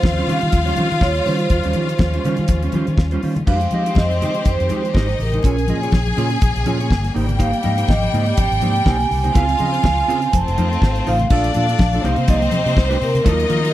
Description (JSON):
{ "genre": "disco", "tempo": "123 BPM", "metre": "4/4", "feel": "swing 56% on 16ths", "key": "unclear", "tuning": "A4 = 440 Hz", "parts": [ { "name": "vibraphone with soft mallets", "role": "melody", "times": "0.0-13.7 s", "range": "Bb4 to A5", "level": "-22 LUFS", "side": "right 2 dB", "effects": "none" }, { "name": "clear studio string section", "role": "second line", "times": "0.0-13.7 s", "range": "G3 to Ab5", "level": "-25 LUFS", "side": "left 4 dB", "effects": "none" }, { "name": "mellow electric guitar", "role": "accompaniment", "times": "0.0-13.7 s", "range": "Gb3 to Eb5", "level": "-25 LUFS", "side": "right 4 dB", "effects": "none" }, { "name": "rich studio string section", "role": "sustained chords", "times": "0.0-13.7 s", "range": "Bb2 to Ab4", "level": "-29 LUFS", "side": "left 1 dB", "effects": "none" }, { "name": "fingered electric bass with an envelope filter", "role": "bass", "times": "0.0-13.7 s", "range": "F1 to F3", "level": "-20 LUFS", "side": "equal", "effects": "none" }, { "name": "damped 70s drum kit", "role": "drums", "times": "0.0-13.7 s", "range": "crash cymbal, hi-hat, kick drum, snare drum", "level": "-18 LUFS", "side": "equal", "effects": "none" }, { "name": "congas", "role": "percussion", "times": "0.0-13.6 s", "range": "none", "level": "-27 LUFS", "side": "left 3 dB", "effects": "none" } ], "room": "small room reverb", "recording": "dry, close 1970s-style studio recording", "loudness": "-15 LUFS", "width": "side -14 dB against mid", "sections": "0.0-3.5 A section; 3.5-11.3 B section; 11.3-13.7 C section", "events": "none", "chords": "0.0 Eb13; 3.5 Fm9; 5.4 Bbm7; 7.1 Abmaj9; 9.3 Dbmaj7; 10.3 F7; 11.3 Bbmaj7; 12.0 Cm7" }